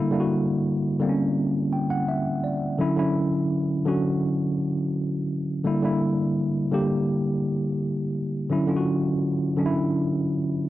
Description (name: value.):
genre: R&B.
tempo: 84 BPM.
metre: 4/4.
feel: straight.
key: D major.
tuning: A4 = 439 Hz.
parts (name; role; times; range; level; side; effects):
tine electric piano; solo; 0.0-10.7 s; D3 to G5; -22 LUFS; equal; medium stereo tremolo.
room: light reverb.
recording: dry, gritty hardware recording, cassette tape.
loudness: -22 LUFS.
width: side -15 dB against mid.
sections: 0.0-10.7 A section.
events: tine electric piano fill 1.4-2.8.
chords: 0.0 Gm6; 2.8 Dmaj9; 5.6 Gm6; 8.5 Dmaj9.